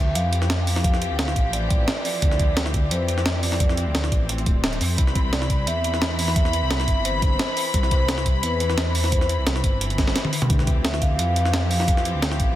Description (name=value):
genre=liquid drum and bass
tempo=174 BPM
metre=4/4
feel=straight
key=D dorian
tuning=A4 = 440 Hz
part: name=vibraphone with soft mallets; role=melody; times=0.0-12.5 s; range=B4 to F5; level=-29 LUFS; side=equal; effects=digital delay
part: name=dark studio string section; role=sustained chords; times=0.0-12.6 s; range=E3 to B5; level=-29 LUFS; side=left 2 dB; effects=none
part: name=dark detuned saw bass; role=bass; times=0.0-12.6 s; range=D1 to F2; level=-24 LUFS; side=equal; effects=none
part: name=breakbeat sampler-style drum kit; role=drums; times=0.2-12.5 s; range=hi-hat, snare drum, toms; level=-26 LUFS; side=equal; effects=none
part: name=electronic kick drum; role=drums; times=0.8-12.5 s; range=none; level=-21 LUFS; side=equal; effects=none
room=light reverb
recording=dense, heavily limited modern master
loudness=-19 LUFS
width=side -13 dB against mid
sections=0.0-12.6 A section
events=drum fill 10.0-10.5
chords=0.0 Dm11; 5.0 Cmaj7; 10.5 Dm11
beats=0.15 0.50 | 0.84 1.19 1.53 1.88 | 2.22 2.57 2.91 3.26 | 3.60 3.95 4.29 4.64 | 4.98 5.33 5.67 6.02 | 6.36 6.71 7.05 7.40 | 7.74 8.09 8.43 8.78 | 9.12 9.46 9.81 10.15 | 10.50 10.84 11.19 11.53 | 11.88 12.22